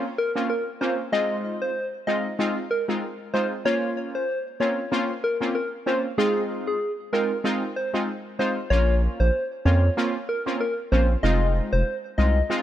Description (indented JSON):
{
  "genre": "dancehall",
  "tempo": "95 BPM",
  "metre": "4/4",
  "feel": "swing 56% on 16ths",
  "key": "F minor",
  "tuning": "A4 = 440 Hz",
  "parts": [
    { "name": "synth brass stab", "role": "accompaniment", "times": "0.0-12.6 s", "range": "Ab3 to F4", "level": "-26 LUFS", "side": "equal", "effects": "chorus" },
    { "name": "soft struck synth lead", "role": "melody", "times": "0.2-12.4 s", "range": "Ab4 to Eb5", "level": "-26 LUFS", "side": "equal", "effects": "chorus, digital delay" },
    { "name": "round analog bass", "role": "bass", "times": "8.7-12.4 s", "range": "F1 to F2", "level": "-20 LUFS", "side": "equal", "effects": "none" }
  ],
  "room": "light reverb, digital ambience",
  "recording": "none",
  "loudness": "-22 LUFS",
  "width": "side -12 dB against mid",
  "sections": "0.0-12.6 A section",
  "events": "none",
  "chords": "0.0 Bbmadd9; 1.1 Fm7; 3.7 Bbmadd9; 6.2 Fm7; 8.7 Bbmadd9; 11.2 Fm7"
}